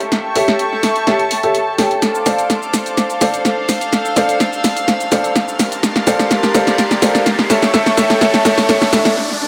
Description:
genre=piano house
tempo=126 BPM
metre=4/4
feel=straight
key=D minor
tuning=A4 = 441 Hz
part: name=analog string pad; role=sustained chords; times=0.0-9.1 s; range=A4 to E6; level=-25 LUFS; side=equal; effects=ensemble chorus
part: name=punchy analog drum machine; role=drums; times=0.0-9.1 s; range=hi-hat, shaker, snare drum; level=-19 LUFS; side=equal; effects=dub echo
part: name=dark studio string section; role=texture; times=0.0-9.2 s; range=D4 to C#6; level=-24 LUFS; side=equal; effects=none
part: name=warm upright piano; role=riff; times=0.4-9.1 s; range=G4 to G5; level=-20 LUFS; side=equal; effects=low-pass filter, dub echo
part: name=plucky analog bass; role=bass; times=0.4-9.1 s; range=none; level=barely audible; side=none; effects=none
part: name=riser and swell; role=sound effects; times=3.9-9.5 s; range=none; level=-28 LUFS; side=equal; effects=none
room=wet spring reverb, RT60 1.2 s, digital ambience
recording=echo-heavy mix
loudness=-15 LUFS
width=mono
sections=0.0-9.5 A section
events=build-up 0.0-9.5; drum fill 0.0-9.2; riser 3.9-9.5; swell 8.7-9.5; stop 9.2-9.5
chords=0.0 A7/D; 2.0 Dm7; 5.6 Gm11/D; 7.5 A7/D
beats=| 0.12 0.59 1.07 1.55 | 2.02 2.50 2.98 3.45 | 3.93 4.40 4.88 5.36 | 5.83 6.31 6.79 7.26 | 7.74 8.21 8.69 9.17

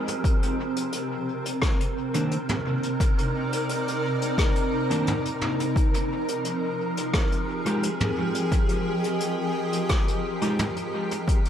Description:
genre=ambient dub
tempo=87 BPM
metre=4/4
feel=straight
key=F dorian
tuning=A4 = 439 Hz
part: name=granular cloud pad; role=sustained chords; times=0.0-11.5 s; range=C3 to Eb5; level=-27 LUFS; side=equal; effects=built-in reverb
part: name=wind-like tuned noise texture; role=texture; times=0.0-11.5 s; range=Bb4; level=-34 LUFS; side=right 2 dB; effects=built-in reverb
part: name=vintage brush drum kit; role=drums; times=0.1-11.5 s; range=hi-hat, rim click, toms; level=-32 LUFS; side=left 1 dB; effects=dub echo
part: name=electronic kick drum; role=drums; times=0.2-11.4 s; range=none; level=-23 LUFS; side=equal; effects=overdrive
part: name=mellow electric guitar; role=stabs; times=2.1-10.6 s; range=Eb3 to G4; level=-31 LUFS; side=equal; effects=wide subtle chorus, dub echo
room=light reverb, small room ambience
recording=none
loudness=-23 LUFS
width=side -9 dB against mid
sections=0.0-11.5 A section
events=none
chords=0.2 Cm9; 5.8 Fm9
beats=| 0.24 0.93 1.62 2.31 | 3.00 3.69 4.38 5.07 | 5.76 6.45 7.14 7.83 | 8.52 9.21 9.90 10.59 | 11.28

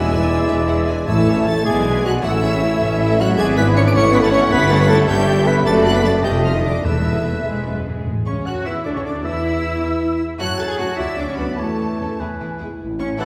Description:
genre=quick classical-period movement for symphony orchestra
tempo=103 BPM (dotted quarters)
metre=6/8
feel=rubato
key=A major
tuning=A4 = 440 Hz
part: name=clear studio violin section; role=melody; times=0.0-13.2 s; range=A5 to D7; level=-31 LUFS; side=equal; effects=none
part: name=clear chamber violin section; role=second line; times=0.0-13.2 s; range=A3 to A5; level=-34 LUFS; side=equal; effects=none
part: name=clear oboe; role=second line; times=0.0-13.2 s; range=A4 to F#5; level=-32 LUFS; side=equal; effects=none
part: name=mellow hollow small flute group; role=second line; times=0.0-13.2 s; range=D5 to F#6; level=-28 LUFS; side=equal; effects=none
part: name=warm clarinet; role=second line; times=0.0-13.2 s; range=D4 to A5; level=-26 LUFS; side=equal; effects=none
part: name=mellow bassoon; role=accompaniment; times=0.0-13.2 s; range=C#3 to A3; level=-28 LUFS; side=equal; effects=none
part: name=rich symphonic viola section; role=accompaniment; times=0.0-13.2 s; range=G#3 to C#5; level=-29 LUFS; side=equal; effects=none
part: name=dark French horn section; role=sustained chords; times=0.0-13.2 s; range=D3 to F#4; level=-25 LUFS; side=equal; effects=none
part: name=clear chamber cello section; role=bass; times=0.0-13.2 s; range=E2 to A4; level=-27 LUFS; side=equal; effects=none
part: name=warm chamber double bass section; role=bass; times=0.0-13.2 s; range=E1 to F#2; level=-25 LUFS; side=equal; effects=none
part: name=timpani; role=percussion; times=0.0-1.6, 6.8-8.6 s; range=E2 to A2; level=-27 LUFS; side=equal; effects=none
room=wet scoring stage reverb, RT60 1.9 s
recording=heard from further back in the room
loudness=-18 LUFS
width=mono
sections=0.0-8.1 A section; 8.1-13.2 B section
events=none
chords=0.0 E7; 1.1 A; 1.7 G#dim/B; 2.2 A; 3.4 E7/G#; 4.0 A; 4.5 A7/G; 5.7 D/F#; 6.3 F7; 6.9 Esus4; 7.5 E; 8.1 C#sus4; 8.7 Dsus2; 9.2 N.C.; 10.4 F#m; 11.0 Bm; 11.6 A/E; 12.2 E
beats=0.50 | 1.08 1.66 | 2.23 2.80 | 3.38 3.95 | 4.52 5.09 | 5.67 6.25 | 6.85 7.46 | 8.07 8.66 | 9.25 9.83 | 10.40 10.99 | 11.59 12.20 | 12.80

